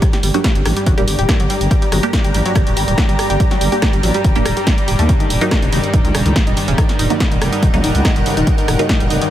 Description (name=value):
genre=driving peak-time techno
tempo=142 BPM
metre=4/4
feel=straight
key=G harmonic minor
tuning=A4 = 440 Hz
part: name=analog drone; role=drone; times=0.0-9.3 s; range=G2 to G3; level=-24 LUFS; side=right 1 dB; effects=chorus, sidechain pumping
part: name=electronic kick drum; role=drums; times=0.0-9.0 s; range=none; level=-16 LUFS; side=equal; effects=none
part: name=punchy analog drum machine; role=drums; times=0.0-9.3 s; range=hi-hat, rim click, snare drum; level=-22 LUFS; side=equal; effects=none
part: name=granular cloud pad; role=texture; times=0.0-9.3 s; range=Eb4 to Bb5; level=-23 LUFS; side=equal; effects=built-in reverb, sidechain pumping
part: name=analog pluck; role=riff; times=0.1-9.2 s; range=C#3 to G4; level=-22 LUFS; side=left 1 dB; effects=chorus, tube saturation, sidechain pumping, tape echo
part: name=growling FM bass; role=bass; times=0.2-9.2 s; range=D1 to Eb2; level=-18 LUFS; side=equal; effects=sidechain pumping
part: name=filtered dub chord stab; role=stabs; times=0.3-8.9 s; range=Gb3 to G4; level=-24 LUFS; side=right 2 dB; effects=none
room=light reverb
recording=none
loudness=-12 LUFS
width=side -12 dB against mid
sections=0.0-9.3 A section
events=none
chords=0.0 Gm; 5.1 Ebm